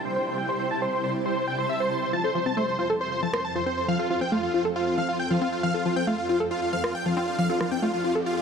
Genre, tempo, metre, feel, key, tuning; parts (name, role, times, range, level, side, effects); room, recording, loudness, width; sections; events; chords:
uplifting trance; 137 BPM; 4/4; straight; F major; A4 = 440 Hz
big supersaw lead; melody; 0.0-8.4 s; F4 to A5; -27 LUFS; right 1 dB; low-pass filter, digital delay
shimmering ambient pad; sustained chords; 0.0-8.4 s; F2 to A5; -31 LUFS; right 1 dB; chorus, built-in reverb
tight sequenced synth; arpeggios; 2.1-8.2 s; F3 to A4; -27 LUFS; left 2 dB; chorus, digital delay
electronic rim click; drums; 3.3-3.4, 6.8-7.7 s; -33 LUFS; equal
riser; sound effects; 6.6-8.4 s; -39 LUFS; equal
light reverb; -23 LUFS; side -6 dB against mid
0.0-8.4 A section
0.0 C; 2.1 F